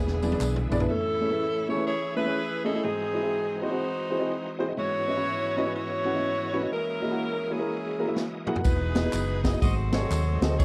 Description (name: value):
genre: uptempo gospel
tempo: 124 BPM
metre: 4/4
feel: swing 63% on 8ths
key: unclear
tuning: A4 = 440 Hz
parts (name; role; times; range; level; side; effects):
- edgy saxophone section; melody; 0.0-10.6 s; B3 to D#5; -32 LUFS; equal; none
- dark grand piano; accompaniment; 0.0-10.6 s; G#2 to F#5; -33 LUFS; equal; none
- bright tonewheel organ; sustained chords; 0.0-10.6 s; G#2 to D#5; -39 LUFS; equal; slow rotary speaker, chorus vibrato
- hollow-body short-scale fingered electric bass; bass; 0.0-0.9, 8.6-10.6 s; E1 to D#2; -30 LUFS; equal; none
- swinging big-band drum kit; drums; 0.1-0.9, 8.2-10.6 s; kick drum, ride cymbal, snare drum, toms; -30 LUFS; equal; none
- tambourine and handclaps; percussion; 0.2-0.8, 8.6-10.6 s; none; -45 LUFS; equal; none
room: light reverb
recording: dry, close 1970s-style studio recording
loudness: -27 LUFS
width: mono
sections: 0.9-10.6 A section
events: drum fill 0.0-0.9, 8.2-8.7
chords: 0.0 E7; 0.9 Amaj7; 2.8 G#7b13; 4.8 C#m11/G#; 6.7 F#13; 8.7 Emaj9; 9.6 G#7b9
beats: 0.41 | 0.89 1.38 1.86 2.34 | 2.83 3.31 3.80 4.28 | 4.77 5.25 5.74 6.22 | 6.71 7.20 7.68 8.17 | 8.65 9.14 9.62 10.11 | 10.60